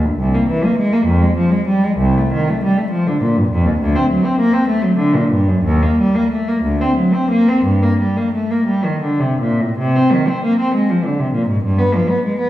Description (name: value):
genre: classical, baroque-style suite movement for unaccompanied cello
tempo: 50-70 BPM (dotted quarters)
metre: 6/8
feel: rubato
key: G minor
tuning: A4 = 438 Hz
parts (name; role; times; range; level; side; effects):
- warm cello; solo; 0.0-12.5 s; C2 to C4; -13 LUFS; equal; none
room: wet recital hall reverb, RT60 1.4 s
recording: heard from further back in the room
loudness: -13 LUFS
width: side -14 dB against mid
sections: 0.0-9.8 A section; 9.8-12.5 A section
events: none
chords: none